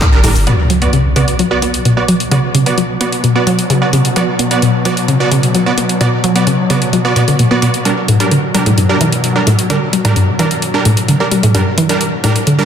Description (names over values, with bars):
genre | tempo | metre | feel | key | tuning
driving peak-time techno | 130 BPM | 4/4 | straight | B harmonic minor | A4 = 436 Hz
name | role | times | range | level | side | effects
resonant blip pluck | riff | 0.0-12.5 s | G2 to B3 | -14 LUFS | left 1 dB | chorus, sidechain pumping
techno drum kit | drums | 0.0-12.6 s | handclaps, hi-hat, shaker | -19 LUFS | left 1 dB | overdrive, small room ambience
supersaw stab | stabs | 0.1-12.7 s | G3 to D5 | -16 LUFS | right 3 dB | sidechain pumping, digital delay
saturated sub bass | bass | 0.1-0.5 s | G1 | -16 LUFS | equal | tube saturation, sidechain pumping, low-pass filter
swarming drone | drone | 1.7-12.7 s | B2 to F#3 | -19 LUFS | left 1 dB | built-in reverb, sidechain pumping
impact | sound effects | 0.5-2.3 s | none | -17 LUFS | equal | none
room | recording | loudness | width
wet lush hall reverb, RT60 1.6 s | dense, heavily limited modern master | -10 LUFS | side -8 dB against mid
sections
0.5-12.7 A section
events
band accent 0.0; impact 0.5-2.3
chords
0.5 Bm; 7.9 Gm